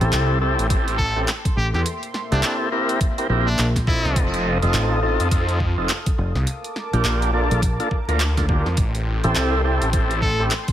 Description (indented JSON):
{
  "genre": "glitch hop",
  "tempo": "104 BPM",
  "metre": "4/4",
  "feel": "swing 60% on 16ths",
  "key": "A phrygian",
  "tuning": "A4 = 440 Hz",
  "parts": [
    { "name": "warm analog pad", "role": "sustained chords", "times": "0.0-10.7 s", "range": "Bb3 to Eb6", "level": "-30 LUFS", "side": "left 1 dB", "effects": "chorus, sidechain pumping" },
    { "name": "tonewheel organ", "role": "stabs", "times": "0.0-10.5 s", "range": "F3 to D#5", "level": "-24 LUFS", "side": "equal", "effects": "overdrive, slow rotary speaker, sidechain pumping, digital delay" },
    { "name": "fingered electric bass", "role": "bass", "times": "0.0-9.3 s", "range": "F1 to C2", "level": "-21 LUFS", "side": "equal", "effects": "none" },
    { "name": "dubstep drum kit", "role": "drums", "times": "0.0-10.7 s", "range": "handclaps, hi-hat, snare drum", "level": "-27 LUFS", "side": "equal", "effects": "none" },
    { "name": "phased detuned saw bass", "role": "bass", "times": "0.1-10.5 s", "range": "F1 to F2", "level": "-22 LUFS", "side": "equal", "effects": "phaser, tube saturation" },
    { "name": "electronic kick drum", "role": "drums", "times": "0.7-10.7 s", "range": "none", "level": "-21 LUFS", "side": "equal", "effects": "none" },
    { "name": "brilliant trumpet", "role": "melody", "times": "1.0-4.2, 10.2-10.5 s", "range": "D4 to A4", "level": "-27 LUFS", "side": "equal", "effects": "vintage 12-bit sampler grit, digital delay" }
  ],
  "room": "digital ambience",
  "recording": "vinyl crackle",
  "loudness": "-18 LUFS",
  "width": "side -11 dB against mid",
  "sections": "0.0-10.7 A section",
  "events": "none",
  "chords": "0.0 Am7; 1.9 C7; 4.2 F7; 6.5 Bbmaj7; 8.8 Am7",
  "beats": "0.12 0.70 1.28 | 1.85 2.43 3.01 3.58 | 4.16 4.74 5.32 5.89 | 6.47 7.04 7.62 8.20 | 8.78 9.35 9.93 10.51"
}